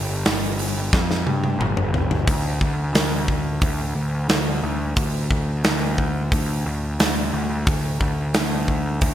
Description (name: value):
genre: hard rock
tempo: 89 BPM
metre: 4/4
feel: straight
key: unclear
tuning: A4 = 440 Hz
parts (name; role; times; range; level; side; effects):
- fuzz picked electric bass; bass; 0.0-9.1 s; G1 to G2; -23 LUFS; equal; overdrive
- big rock drum kit; drums; 0.3-9.1 s; hi-hat, kick drum, snare drum, toms; -22 LUFS; equal; gated reverb
room: light reverb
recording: bright 1980s-style digital production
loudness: -19 LUFS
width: side -11 dB against mid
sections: 0.0-2.3 A section; 2.3-9.1 B section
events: drum fill 0.9-2.3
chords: none